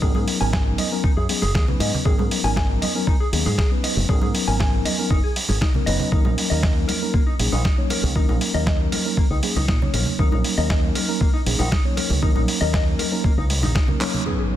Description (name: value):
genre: nu-disco, nu disco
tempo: 118 BPM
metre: 4/4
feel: straight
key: unclear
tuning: A4 = 440 Hz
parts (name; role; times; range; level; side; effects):
- mellow tine electric piano; accompaniment; 0.0-14.6 s; G#2 to C#5; -26 LUFS; left 1 dB; medium stereo tremolo, vintage 12-bit sampler grit, digital delay
- mellow electric guitar; riff; 0.0-14.4 s; A#3 to G#5; -29 LUFS; left 3 dB; lush chorus, low-pass filter, digital delay
- fingered electric bass with an envelope filter; bass; 0.0-13.7 s; F#1 to A#2; -23 LUFS; equal; sidechain pumping
- electronic kick drum; drums; 0.0-13.9 s; none; -20 LUFS; equal; none
- congas; percussion; 0.1-14.2 s; none; -30 LUFS; right 4 dB; none
- dusty soul sampler-style drum kit; drums; 0.3-14.1 s; handclaps, hi-hat, snare drum; -26 LUFS; equal; low-pass filter on hats, low-pass filter on snare, low-pass filter on toms, low-pass filter on room
- impact; sound effects; 14.3-14.6 s; none; -25 LUFS; equal; none
room: little or no reverb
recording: dense, heavily limited modern master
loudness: -18 LUFS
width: side -12 dB against mid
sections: 0.0-14.3 A section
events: drum fill 14.0; band accent 14.0; impact 14.3-14.6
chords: 0.0 G#m11; 6.1 D#m7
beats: | 0.02 0.53 1.04 1.55 | 2.06 2.56 3.07 3.58 | 4.09 4.60 5.11 5.62 | 6.12 6.63 7.14 7.65 | 8.16 8.67 9.18 9.68 | 10.19 10.70 11.21 11.72 | 12.23 12.73 13.24 13.75 | 14.26